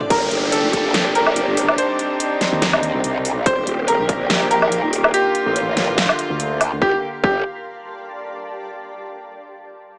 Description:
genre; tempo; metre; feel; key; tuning
heavy wobble dubstep; 143 BPM; 4/4; swing 54% on 16ths, half-time; G minor; A4 = 440 Hz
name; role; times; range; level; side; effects
bright concert grand piano; melody; 0.0-7.4 s; G4 to C5; -24 LUFS; equal; tape echo
warm studio string section; sustained chords; 0.0-7.0 s; D3 to G4; -26 LUFS; equal; sidechain pumping
dubstep drum kit; drums; 0.0-6.7 s; hi-hat, snare drum, toms, woodblock; -22 LUFS; equal; studio ambience
granular cloud pad; texture; 0.0-8.5 s; C4 to A5; -32 LUFS; equal; built-in reverb, sidechain pumping
growl bass; bass; 0.1-7.4 s; Eb1 to Eb2; -25 LUFS; equal; chorus, overdrive
electronic kick drum; drums; 0.1-0.8, 3.5-4.2, 6.8-7.3 s; none; -24 LUFS; equal; distortion, studio ambience
downlifter; sound effects; 0.1-3.5 s; none; -30 LUFS; equal; none
room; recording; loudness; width
moderate lush hall reverb, RT60 1.9 s; small speaker sound; -18 LUFS; mono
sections
0.1-6.8 A section; 6.8-8.5 B section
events
none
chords
0.1 Gm; 1.8 Cmadd9; 3.5 Eb; 5.1 Bb; 6.8 G5

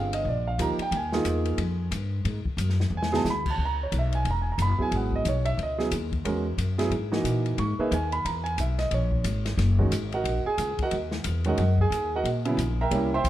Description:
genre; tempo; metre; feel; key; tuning
modal jazz; 180 BPM; 4/4; swing 61% on 8ths; C# dorian from 3.6 s; A4 = 445 Hz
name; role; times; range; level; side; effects
warm concert grand piano; accompaniment; 0.0-13.3 s; C#3 to C#6; -27 LUFS; right 3 dB; none
upright bass; bass; 0.0-13.3 s; E1 to A#2; -26 LUFS; left 1 dB; none
open jazz drum kit; drums; 0.1-13.3 s; crash cymbal, hi-hat, kick drum, ride cymbal, snare drum; -34 LUFS; left 2 dB; none
room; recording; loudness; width
light reverb; dark, warm production; -24 LUFS; side -13 dB against mid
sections
0.0-3.6 A section; 3.6-13.3 A section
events
drum fill 2.9-3.2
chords
0.0 F9sus4; 0.9 Bbsus4; 2.2 D69; 3.6 C#m11; 8.9 D#m

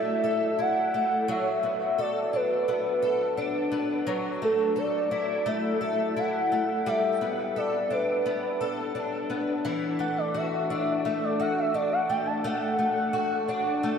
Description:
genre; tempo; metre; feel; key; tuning
dream pop; 86 BPM; 4/4; straight; unclear; A4 = 441 Hz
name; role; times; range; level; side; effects
warm velvety synth lead; melody; 0.0-14.0 s; A4 to A5; -27 LUFS; right 1 dB; chorus, diffuse ambient delay
fingerpicked twelve-string acoustic guitar; arpeggios; 0.0-14.0 s; E3 to A4; -28 LUFS; left 2 dB; ensemble chorus, diffuse ambient delay
room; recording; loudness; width
wet cathedral reverb, RT60 6.6 s; dreamy mix soaked in reverb; -24 LUFS; side -7 dB against mid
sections
0.0-14.0 A section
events
none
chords
0.0 Dadd9 (rootless); 1.3 Bm7; 4.1 Dadd9; 6.9 Gadd9; 9.7 Dadd9; 12.4 D/A

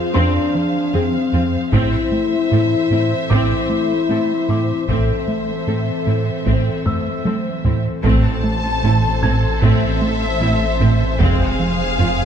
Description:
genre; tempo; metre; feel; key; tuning
cinematic, hybrid orchestral and electronic film score; 76 BPM; 4/4; straight; A harmonic minor; A4 = 440 Hz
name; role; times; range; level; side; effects
rich symphonic violin section; second line; 0.0-12.2 s; Ab4 to F5; -26 LUFS; left 3 dB; none
airy breathy pad; sustained chords; 0.0-12.2 s; E3 to C5; -26 LUFS; equal; chorus
mellow French horn section; sustained chords; 0.0-7.2 s; C4 to A4; -21 LUFS; left 4 dB; none
dark concert grand piano; texture; 0.0-12.2 s; D5 to G#6; -33 LUFS; left 2 dB; ping-pong delay
rich symphonic viola section; accompaniment; 0.1-12.1 s; Ab3 to A4; -25 LUFS; right 1 dB; none
rich symphonic cello section; bass; 0.1-12.1 s; F2 to A2; -24 LUFS; right 2 dB; none
rubbery square bass; riff; 0.2-12.2 s; F2 to A3; -21 LUFS; right 2 dB; none
taiko ensemble; drums; 1.7-11.9 s; none; -23 LUFS; left 1 dB; none
warm studio violin section; melody; 8.0-12.2 s; E5 to A5; -23 LUFS; left 1 dB; none
detuned saw bass; bass; 8.0-12.2 s; F1 to A1; -22 LUFS; left 1 dB; none
rich symphonic double bass section; bass; 8.0-12.1 s; F1 to A1; -23 LUFS; right 3 dB; none
room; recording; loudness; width
moderate scoring stage reverb, RT60 1.6 s; dark, warm production; -15 LUFS; side -8 dB against mid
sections
0.0-8.0 A section; 8.0-12.2 A section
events
drum fill 6.9-8.0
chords
0.0 Fm; 1.7 Am; 11.2 Fm

